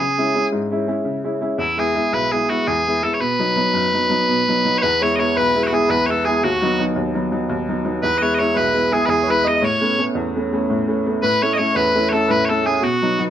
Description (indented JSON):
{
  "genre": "celtic folk",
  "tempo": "112 BPM (dotted quarters)",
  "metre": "9/8",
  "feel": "straight",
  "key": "unclear",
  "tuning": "A4 = 439 Hz",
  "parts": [
    { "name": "loud bright bagpipes", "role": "melody", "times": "0.0-13.2 s", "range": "E4 to D#5", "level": "-19 LUFS", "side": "equal", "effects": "none" },
    { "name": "bright upright piano", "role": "accompaniment", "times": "0.0-13.3 s", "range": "B1 to E4", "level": "-20 LUFS", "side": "equal", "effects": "none" },
    { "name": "accordion", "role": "second line", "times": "4.8-13.2 s", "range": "F#4 to D#5", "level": "-22 LUFS", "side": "equal", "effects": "none" }
  ],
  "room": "moderate studio reverb, RT60 0.5 s",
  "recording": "minimal, uncompressed stereo recording",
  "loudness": "-16 LUFS",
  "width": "side -10 dB against mid",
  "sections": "0.0-4.8 A section; 4.8-13.3 B section",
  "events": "none",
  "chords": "0.0 C#m; 1.6 E; 3.2 B; 4.8 E; 6.4 B/D#; 8.0 E; 9.6 Aadd9; 11.2 A"
}